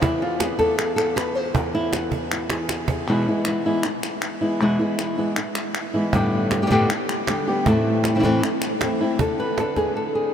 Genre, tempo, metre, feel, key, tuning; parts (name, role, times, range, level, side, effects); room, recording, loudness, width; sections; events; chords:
flamenco; 157 BPM; 4/4; straight; A4 = 440 Hz
flamenco guitar; melody; 0.0-10.3 s; E2 to C5; -20 LUFS; equal
cajon; percussion; 0.0-3.0, 6.1-10.0 s; -28 LUFS; right 4 dB
palmas hand claps; percussion; 0.0-9.0 s; -30 LUFS; left 2 dB
wet huge ambient reverb, RT60 7.2 s; in a vast, echoing space; -20 LUFS; side -8 dB against mid
0.0-3.1 A section; 3.1-9.2 B section; 9.2-10.3 C section
nylon-string guitar solo 0.0-3.1; drum fill 2.5-3.1
0.0 E; 6.1 Gadd9; 7.7 Am; 9.2 N.C.